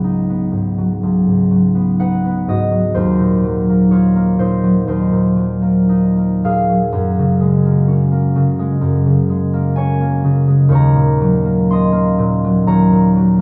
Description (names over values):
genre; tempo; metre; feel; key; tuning
classical, solo harp piece; 62 BPM; 4/4; rubato; Eb dorian; A4 = 439 Hz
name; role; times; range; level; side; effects
concert harp; solo; 0.0-13.4 s; Db2 to C6; -15 LUFS; equal; none
room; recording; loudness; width
light reverb; close, detailed microphones; -15 LUFS; mono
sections
0.0-13.4 A section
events
none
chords
0.0 Db9sus4; 3.0 Ebm6; 6.9 Gbmaj9; 10.7 Ebm7